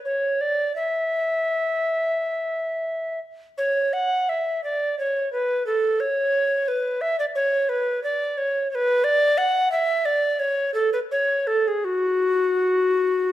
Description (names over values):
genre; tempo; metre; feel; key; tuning
classical, baroque-style fantasia for unaccompanied recorder; 87 BPM; 4/4; uneven beats, rubato; F# minor from 9.0 s; A4 = 439 Hz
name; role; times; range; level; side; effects
tenor recorder; solo; 0.1-13.3 s; F#4 to F#5; -20 LUFS; equal; none
room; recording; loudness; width
moderate recital hall reverb, RT60 1.4 s; minimal, uncompressed stereo recording; -20 LUFS; side -13 dB against mid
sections
0.0-13.3 A section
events
none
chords
none